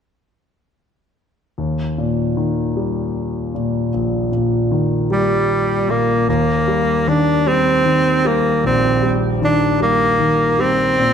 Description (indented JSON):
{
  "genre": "pop",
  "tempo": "51 BPM (dotted quarters)",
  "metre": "6/8",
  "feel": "straight",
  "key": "Eb major",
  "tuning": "A4 = 439 Hz",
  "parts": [
    { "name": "warm concert grand piano", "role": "accompaniment", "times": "1.6-11.1 s", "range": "Bb1 to G3", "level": "-18 LUFS", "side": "left 1 dB", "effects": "none" },
    { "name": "bright tenor saxophone", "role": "melody", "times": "5.1-11.1 s", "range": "G3 to D4", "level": "-16 LUFS", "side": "right 1 dB", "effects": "tape echo" }
  ],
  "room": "moderate recital hall reverb, RT60 1.6 s",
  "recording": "dark, warm production",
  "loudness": "-15 LUFS",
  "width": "side -8 dB against mid",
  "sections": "1.6-6.3 A section; 6.3-11.1 B section",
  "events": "none",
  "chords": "1.6 Eb"
}